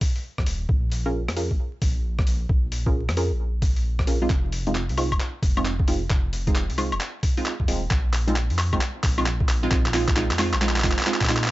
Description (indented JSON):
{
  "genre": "UK garage, two-step garage",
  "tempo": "133 BPM",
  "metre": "4/4",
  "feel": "swing 64% on 16ths",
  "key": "unclear",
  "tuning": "A4 = 440 Hz",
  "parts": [
    { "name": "boom bap sampler-style drum kit", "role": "drums", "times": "0.0-11.5 s", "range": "handclaps, hi-hat, rim click, woodblock", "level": "-28 LUFS", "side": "left 1 dB", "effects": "overdrive" },
    { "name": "electronic kick drum", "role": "drums", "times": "0.0-11.3 s", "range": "none", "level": "-23 LUFS", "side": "equal", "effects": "overdrive" },
    { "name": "dark detuned saw bass", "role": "bass", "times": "0.4-11.5 s", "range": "Eb1 to Bb2", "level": "-26 LUFS", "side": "equal", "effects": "none" },
    { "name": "punchy chord stab", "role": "stabs", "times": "1.1-11.5 s", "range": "Ab3 to Bb4", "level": "-27 LUFS", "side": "right 2 dB", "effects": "chorus, cassette tape, analog delay" }
  ],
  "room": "little or no reverb",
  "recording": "dry, gritty hardware recording, transformer saturation, vinyl crackle, nothing above 7.8 kHz",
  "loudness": "-21 LUFS",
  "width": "side -17 dB against mid",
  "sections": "0.0-11.5 A section",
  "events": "build-up 0.0-11.5; filter sweep on synth stab 0.0-11.5; drum fill 4.3-11.5",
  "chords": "0.0 F7(no3); 0.7 Bbm7; 4.3 Fm7; 7.9 Bb5"
}